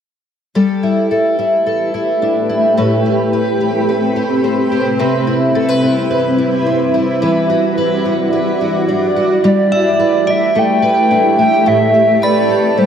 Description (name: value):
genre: dream pop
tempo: 108 BPM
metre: 4/4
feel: straight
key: G major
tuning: A4 = 441 Hz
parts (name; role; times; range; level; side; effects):
- granular cloud pad; sustained chords; 1.4-12.9 s; G3 to D5; -16 LUFS; right 1 dB; built-in reverb
- fingerpicked twelve-string acoustic guitar; arpeggios; 0.6-12.9 s; A2 to B4; -15 LUFS; left 1 dB; wide subtle chorus, digital delay
- warbly nostalgic lead; melody; 9.5-12.9 s; C5 to G5; -13 LUFS; right 1 dB; chorus, digital delay
- glassy synth bell; texture; 9.7-12.9 s; D5 to B5; -24 LUFS; right 2 dB; chorus, phaser, digital delay
room: wet lush hall reverb, RT60 2.8 s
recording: none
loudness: -12 LUFS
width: side -8 dB against mid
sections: 0.6-9.4 A section; 9.4-12.9 B section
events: none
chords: 0.6 G69; 2.8 Am9; 5.0 Cmaj7; 7.2 Em9; 9.4 G69; 11.7 Am9